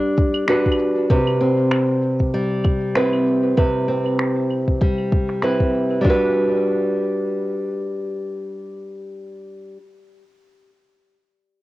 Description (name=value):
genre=folktronica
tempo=97 BPM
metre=4/4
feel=swing 56% on 16ths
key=G major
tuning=A4 = 438 Hz
part: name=nylon-string guitar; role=arpeggios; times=0.0-9.9 s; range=C3 to B4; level=-19 LUFS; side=equal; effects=cassette tape, tape echo
part: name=electronic kick drum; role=drums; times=0.2-6.2 s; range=none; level=-19 LUFS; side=equal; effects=none
part: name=electronic shaker, claves and finger snaps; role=drums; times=0.2-6.0 s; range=none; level=-27 LUFS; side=right 1 dB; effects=low-pass filter on hats, low-pass filter on perc, low-pass filter on snare
room=light reverb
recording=home recording on cassette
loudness=-17 LUFS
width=side -17 dB against mid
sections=0.0-6.0 A section; 6.0-8.5 B section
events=filter sweep on drum 0.0-6.0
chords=0.0 Gmaj7; 1.1 Cmaj7; 6.0 Gmaj7